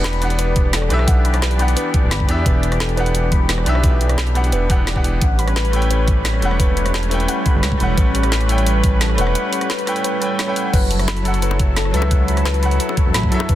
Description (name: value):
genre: liquid drum and bass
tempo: 174 BPM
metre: 4/4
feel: straight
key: unclear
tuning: A4 = 440 Hz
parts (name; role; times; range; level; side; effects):
- bright baby grand piano; accompaniment; 0.0-13.6 s; E3 to G5; -24 LUFS; equal; dub echo
- lush unison pad; sustained chords; 0.0-13.6 s; F#3 to B4; -25 LUFS; right 1 dB; chorus, sidechain pumping
- harp-like synth pluck; arpeggios; 0.0-13.6 s; A4 to B5; -26 LUFS; left 3 dB; chorus, ping-pong delay
- smooth synth bass; bass; 0.0-13.6 s; D1 to F#2; -18 LUFS; equal; tube saturation
- drum and bass drum kit; drums; 0.0-13.6 s; crash cymbal, hi-hat, rim click, snare drum; -25 LUFS; equal; overdrive
- electronic kick drum; drums; 0.6-13.6 s; none; -17 LUFS; equal; overdrive
- bongos; percussion; 11.1-13.5 s; none; -29 LUFS; left 7 dB; none
room: digital ambience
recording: dense, heavily limited modern master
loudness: -15 LUFS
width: side -13 dB against mid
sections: 0.0-13.6 A section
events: break 9.4-10.7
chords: 0.0 Em9; 5.2 A9; 10.7 F#m7